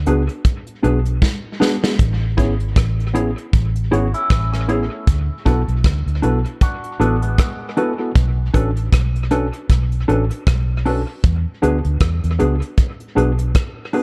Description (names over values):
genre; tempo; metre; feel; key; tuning
lovers rock reggae; 78 BPM; 4/4; swing 58% on 16ths; A major; A4 = 440 Hz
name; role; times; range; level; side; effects
vintage muted fingered electric bass; bass; 0.0-13.5 s; G#1 to E2; -21 LUFS; equal; none
tine electric piano; accompaniment; 0.1-14.0 s; B3 to A4; -25 LUFS; equal; none
mellow electric guitar; stabs; 0.1-14.0 s; D4 to C#5; -25 LUFS; equal; tremolo
soft brush drum kit; drums; 0.1-14.0 s; hi-hat, kick drum, rim click, snare drum; -19 LUFS; equal; dub echo
electric guitar with an envelope filter; arpeggios; 3.9-8.1 s; G#3 to F#4; -30 LUFS; equal; dub echo
room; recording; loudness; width
light reverb, studio ambience; dark, warm production; -18 LUFS; mono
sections
0.0-14.0 A section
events
drum fill 1.2-2.0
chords
0.0 E7 (rootless); 2.0 Amaj7; 5.1 D6; 8.2 Bm7; 11.2 E7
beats
0.45 1.22 | 1.99 2.76 3.53 4.30 | 5.07 5.84 6.61 7.38 | 8.15 8.93 9.70 10.47 | 11.24 12.01 12.78 13.55